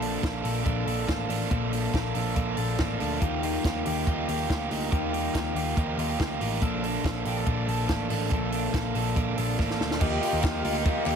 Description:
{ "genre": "jangly indie pop", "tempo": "141 BPM", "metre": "4/4", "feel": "straight", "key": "Bb major", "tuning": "A4 = 440 Hz", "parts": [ { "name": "overdriven electric guitar", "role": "accompaniment", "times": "0.0-11.2 s", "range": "Bb2 to A4", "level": "-30 LUFS", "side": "right 7 dB", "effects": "none" }, { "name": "clean electric guitar", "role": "arpeggios", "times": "0.0-11.2 s", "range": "Bb2 to A4", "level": "-31 LUFS", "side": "left 7 dB", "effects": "spring reverb, ping-pong delay" }, { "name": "vintage muted picked electric bass", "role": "bass", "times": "0.0-11.2 s", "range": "A1 to Eb2", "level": "-32 LUFS", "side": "equal", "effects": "none" }, { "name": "compact cocktail drum kit", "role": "drums", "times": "0.0-11.2 s", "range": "crash cymbal, hi-hat, kick drum, ride cymbal, snare drum", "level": "-30 LUFS", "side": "equal", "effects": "none" }, { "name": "combo organ", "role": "accompaniment", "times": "10.0-11.2 s", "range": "F4 to F5", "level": "-32 LUFS", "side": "left 4 dB", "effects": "none" }, { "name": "group handclap", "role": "percussion", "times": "10.4-11.2 s", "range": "none", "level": "-39 LUFS", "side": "left 6 dB", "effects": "none" } ], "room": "moderate club reverb, RT60 0.7 s", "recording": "heavily compressed radio sound", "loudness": "-25 LUFS", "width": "side -7 dB against mid", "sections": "0.0-10.0 A section; 10.0-11.2 B section", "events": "drum fill 9.6-10.0", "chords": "0.0 Bbmaj7; 3.2 Ebadd9; 6.6 Bbmaj7; 10.0 Ebadd9", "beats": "0.23 0.66 1.09 | 1.51 1.94 2.37 2.79 | 3.22 3.65 4.07 4.50 | 4.92 5.35 5.77 6.20 | 6.62 7.04 7.47 7.89 | 8.32 8.74 9.16 9.59 | 10.01 10.43 10.85" }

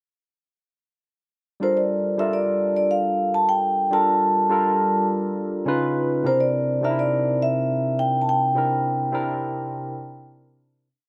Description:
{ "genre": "soul", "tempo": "104 BPM", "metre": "4/4", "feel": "straight", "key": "G dorian", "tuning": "A4 = 440 Hz", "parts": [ { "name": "vibraphone with soft mallets", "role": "melody", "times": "1.6-10.3 s", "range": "C5 to A5", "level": "-24 LUFS", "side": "equal", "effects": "none" }, { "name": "barky tine electric piano", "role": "accompaniment", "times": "1.6-10.9 s", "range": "C3 to B4", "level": "-26 LUFS", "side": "equal", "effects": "overdrive, lush chorus" } ], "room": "light reverb, small room ambience", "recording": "none", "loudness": "-22 LUFS", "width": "mono", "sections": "1.6-10.9 verse", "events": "fade-out 8.6-10.9", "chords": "1.6 Gm9; 5.7 C#9; 6.2 C9", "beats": "| 1.61 2.19 2.77 3.35 | 3.93 4.51 5.09 5.67 | 6.25 6.82 7.40 7.98 | 8.56 9.14 9.71 10.29" }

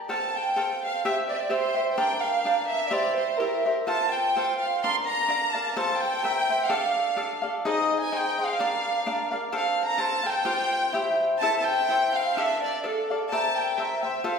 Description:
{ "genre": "mexican folk, mariachi", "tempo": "127 BPM", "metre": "2/4", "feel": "swing 54% on 8ths", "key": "F major", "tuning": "A4 = 440 Hz", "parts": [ { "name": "cavaquinho", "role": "accompaniment", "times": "0.0-14.4 s", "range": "D4 to G5", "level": "-27 LUFS", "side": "left 1 dB", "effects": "none" }, { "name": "warm chamber violin section", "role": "melody", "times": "0.1-14.4 s", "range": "A4 to C6", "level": "-25 LUFS", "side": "right 1 dB", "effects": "none" } ], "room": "wet recital hall reverb, RT60 1.6 s", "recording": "heard from further back in the room", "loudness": "-23 LUFS", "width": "side -6 dB against mid", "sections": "0.1-14.4 A section", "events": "none", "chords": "0.1 Fadd9; 1.0 C; 2.0 Gm; 2.9 C; 3.9 F; 4.8 Bb; 5.8 F; 6.2 C7; 6.7 Dm; 7.6 Ab; 8.6 Bb; 9.5 F6; 10.5 Csus4; 10.9 C; 11.4 Am; 12.4 Dm; 13.3 C7", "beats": "| 0.09 0.56 | 1.04 1.51 | 1.98 2.45 | 2.92 3.40 | 3.87 4.35 | 4.82 5.29 | 5.76 6.23 | 6.70 7.17 | 7.65 8.12 | 8.59 9.06 | 9.53 10.00 | 10.47 10.94 | 11.42 11.89 | 12.37 12.84 | 13.31 13.78 | 14.25" }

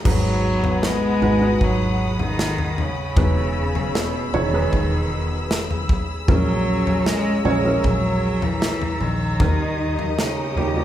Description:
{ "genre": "pop ballad", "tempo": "77 BPM", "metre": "4/4", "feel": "straight", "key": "G# minor", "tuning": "A4 = 440 Hz", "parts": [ { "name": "mellow French horn section", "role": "second line", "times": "0.0-10.8 s", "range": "B2 to D#4", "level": "-29 LUFS", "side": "left 5 dB", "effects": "none" }, { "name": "felt-muted upright piano", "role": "accompaniment", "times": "0.0-10.8 s", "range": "G#2 to C#5", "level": "-26 LUFS", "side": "right 4 dB", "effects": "none" }, { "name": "warm studio string section", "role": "sustained chords", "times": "0.0-10.8 s", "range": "G4 to E6", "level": "-30 LUFS", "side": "left 2 dB", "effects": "none" }, { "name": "warm cello", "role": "melody", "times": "0.1-10.8 s", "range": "B2 to G#3", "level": "-24 LUFS", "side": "right 1 dB", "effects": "none" }, { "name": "vintage muted fingered electric bass", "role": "bass", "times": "0.1-10.8 s", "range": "E1 to D#2", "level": "-26 LUFS", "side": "equal", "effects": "none" }, { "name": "modern studio drum kit", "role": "drums", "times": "0.1-10.8 s", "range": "crash cymbal, kick drum, snare drum, toms", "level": "-23 LUFS", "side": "left 1 dB", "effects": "none" } ], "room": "moderate recital hall reverb, RT60 1.4 s", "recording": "recorded in a church or concert hall", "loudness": "-18 LUFS", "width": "side -12 dB against mid", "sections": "0.0-10.8 A section", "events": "none", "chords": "0.0 G#m7; 3.2 Emaj7; 6.3 A#m7b5; 9.4 D#", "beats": "| 0.05 0.83 1.61 2.39 | 3.17 3.94 4.72 5.50 | 6.28 7.06 7.84 8.62 | 9.40 10.18" }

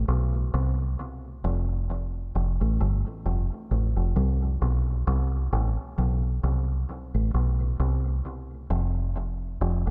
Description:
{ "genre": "reggae", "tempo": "66 BPM", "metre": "4/4", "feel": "swing 57% on 16ths", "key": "unclear", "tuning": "A4 = 440 Hz", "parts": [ { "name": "deep dub fingered electric bass", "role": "solo", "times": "0.0-9.9 s", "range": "F1 to C2", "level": "-27 LUFS", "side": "equal", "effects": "tape echo" } ], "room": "light reverb", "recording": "dark, warm production", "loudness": "-27 LUFS", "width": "mono", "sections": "0.0-9.9 A section", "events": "none", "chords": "none", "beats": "0.53 | 1.43 2.34 3.25 4.15 | 5.06 5.97 6.87 7.78 | 8.69 9.60" }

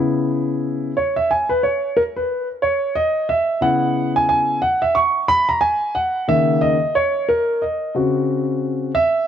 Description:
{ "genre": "hip hop", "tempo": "90 BPM", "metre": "4/4", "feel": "swing 60% on 16ths", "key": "C# dorian", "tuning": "A4 = 442 Hz", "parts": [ { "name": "dark grand piano", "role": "solo", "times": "0.0-9.3 s", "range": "C#3 to C#6", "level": "-16 LUFS", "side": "equal", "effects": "none" } ], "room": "light reverb", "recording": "worn, warbling old tape, cassette tape, warbly pitch drift", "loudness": "-16 LUFS", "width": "side -9 dB against mid", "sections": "0.0-9.3 A section", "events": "grand piano solo 0.0-9.3", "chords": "0.0 C#m7; 7.9 F#7(no3)/C#", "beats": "0.61 1.28 1.95 | 2.61 3.28 3.95 4.61 | 5.28 5.95 6.61 7.28 | 7.95 8.61" }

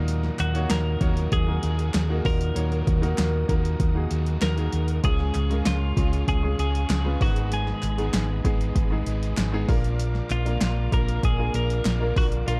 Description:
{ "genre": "piano-driven pop", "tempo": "97 BPM", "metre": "4/4", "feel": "straight", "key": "Eb minor", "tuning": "A4 = 442 Hz", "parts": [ { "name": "warm grand piano", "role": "accompaniment", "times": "0.0-12.6 s", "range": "Ab2 to Eb5", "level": "-33 LUFS", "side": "equal", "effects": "none" }, { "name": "bright tonewheel organ", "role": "sustained chords", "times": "0.0-12.6 s", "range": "Ab4 to Eb6", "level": "-44 LUFS", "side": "equal", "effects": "chorus vibrato, fast rotary speaker" }, { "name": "overdriven semi-hollow guitar", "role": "riff", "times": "0.0-12.6 s", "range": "Ab2 to Bb4", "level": "-39 LUFS", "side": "equal", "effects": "none" }, { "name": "hollow-body short-scale fingered electric bass", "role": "bass", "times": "0.0-12.6 s", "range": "Ab1 to Eb2", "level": "-27 LUFS", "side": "equal", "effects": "none" }, { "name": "deep house drum kit", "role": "drums", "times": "0.1-12.6 s", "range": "hi-hat, kick drum, snare drum", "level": "-28 LUFS", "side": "equal", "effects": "overdrive" }, { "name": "twelve-string electric guitar", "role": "melody", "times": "0.4-12.6 s", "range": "F4 to Bb4", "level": "-34 LUFS", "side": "equal", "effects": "spring reverb" }, { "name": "group handclap", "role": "percussion", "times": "0.4-12.0 s", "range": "none", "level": "-41 LUFS", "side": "equal", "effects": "none" } ], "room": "little or no reverb", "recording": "dark, warm production", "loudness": "-24 LUFS", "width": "mono", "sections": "0.0-12.6 A section", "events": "none", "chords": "0.0 Ebm; 5.0 Db; 7.2 Abm; 9.7 Bb", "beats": "| 0.08 0.70 1.32 1.94 | 2.56 3.18 3.80 4.42 | 5.04 5.66 6.28 6.90 | 7.52 8.14 8.76 9.38 | 10.00 10.62 11.23 11.85 | 12.47" }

